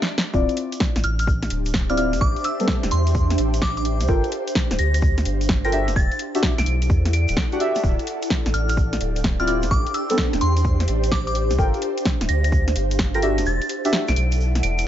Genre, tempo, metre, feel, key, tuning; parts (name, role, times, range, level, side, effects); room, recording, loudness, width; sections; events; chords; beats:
UK garage, two-step garage; 128 BPM; 4/4; swing 66% on 16ths; D minor; A4 = 441 Hz
house drum kit; drums; 0.0-14.9 s; hi-hat, snare drum; -25 LUFS; equal
deep mellow chord stab; stabs; 0.3-14.0 s; G3 to G5; -25 LUFS; left 1 dB; chorus, dub echo
soft dub sub bass; bass; 0.3-14.9 s; D1 to E2; -22 LUFS; equal; tube saturation
electronic kick drum; drums; 0.3-13.1 s; -22 LUFS; equal
tube shaker; percussion; 0.3-14.8 s; -41 LUFS; right 4 dB
ethereal airy pad; texture; 1.5-14.9 s; D4 to F#5; -28 LUFS; right 1 dB; ensemble chorus, built-in reverb, phaser, sidechain pumping
glassy synth bell; melody; 1.0-14.8 s; C6 to D7; -28 LUFS; equal; chorus, dub echo
light reverb; nothing above 7.7 kHz; -18 LUFS; side -11 dB against mid
0.3-14.9 A section
drum fill 0.0-0.3; stop 0.0-0.3; drop 0.3-14.9; kick drops out 13.5-14.9
0.3 Dm9; 2.2 Am9; 4.1 Gm9; 5.7 Em9; 7.8 Dm9; 9.7 Am9; 11.6 Gm9; 13.2 Em9
| 0.34 0.80 1.27 1.74 | 2.21 2.68 3.15 3.62 | 4.08 4.55 5.02 5.49 | 5.96 6.43 6.90 7.37 | 7.83 8.30 8.77 9.24 | 9.71 10.18 10.65 11.12 | 11.59 12.05 12.52 12.99 | 13.46 13.93 14.40 14.87